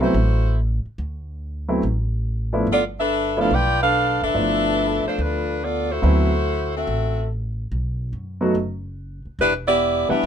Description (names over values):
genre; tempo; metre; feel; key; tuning
jazz, big band swing; 143 BPM; 4/4; swing 67% on 8ths; D mixolydian; A4 = 440 Hz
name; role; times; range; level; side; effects
warm saxophone section; melody; 0.0-10.3 s; G3 to G5; -20 LUFS; equal; none
warm grand piano; accompaniment; 0.0-10.3 s; E3 to F#5; -22 LUFS; equal; none
upright bass; bass; 0.0-10.3 s; E1 to F#2; -24 LUFS; equal; none
room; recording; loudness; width
light reverb; minimal, uncompressed stereo recording; -19 LUFS; side -8 dB against mid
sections
0.0-10.3 A section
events
none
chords
0.0 D13; 2.7 G13; 6.0 D13; 7.7 B5; 9.4 Em7